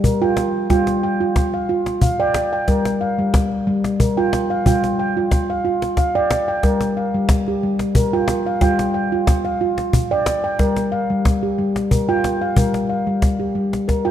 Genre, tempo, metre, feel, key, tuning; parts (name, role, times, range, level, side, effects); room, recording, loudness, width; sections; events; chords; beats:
world meditative, meditative tuned percussion; 91 BPM; 3/4; swing 53% on 16ths; G minor pentatonic; A4 = 444 Hz
handpan; arpeggios; 0.0-14.1 s; G3 to G5; -18 LUFS; right 1 dB
cajon; percussion; 0.0-14.0 s; -19 LUFS; left 1 dB
wet echo chamber reverb, RT60 2.5 s; dark, warm production; -16 LUFS; side -10 dB against mid
0.0-14.1 A section
0.0 Gm; 0.7 Dmadd11/G; 2.7 Gm; 4.7 Dmadd11/G; 6.6 Gm; 8.6 Dmadd11/G; 10.6 Gm
0.04 | 0.70 1.36 2.02 | 2.68 3.34 4.00 | 4.66 5.32 5.98 | 6.64 7.30 7.96 | 8.62 9.27 9.93 | 10.59 11.25 11.91 | 12.57 13.22 13.88